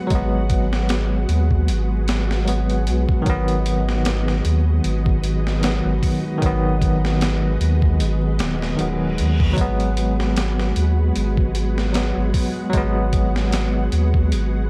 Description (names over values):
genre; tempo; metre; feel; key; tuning
trip hop; 76 BPM; 4/4; swing 55% on 16ths; G# minor; A4 = 441 Hz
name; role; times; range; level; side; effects
bell-like tine electric piano; accompaniment; 0.0-14.7 s; D#3 to B3; -26 LUFS; equal; tremolo, vintage 12-bit sampler grit, tape echo
string machine, cellos; sustained chords; 0.0-14.7 s; G#3 to F#5; -33 LUFS; equal; ensemble chorus
flickering grainy texture; texture; 0.0-14.7 s; F#4; -37 LUFS; equal; built-in reverb
round analog bass; bass; 0.1-14.7 s; D#1 to D#2; -23 LUFS; equal; none
boom bap sampler-style drum kit; drums; 0.1-14.5 s; hi-hat, kick drum, snare drum; -26 LUFS; equal; none
reverse cymbal; sound effects; 8.9-9.6 s; none; -38 LUFS; equal; none
room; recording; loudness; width
little or no reverb; dark, warm production, vinyl crackle; -20 LUFS; mono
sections
0.0-14.7 A section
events
reverse cymbal 8.9-9.6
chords
0.0 G#m7; 3.3 B/G#; 9.6 G#m7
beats
| 0.10 0.89 1.68 2.47 | 3.26 4.05 4.84 5.63 | 6.42 7.21 8.00 8.79 | 9.57 10.37 11.15 11.94 | 12.73 13.52 14.31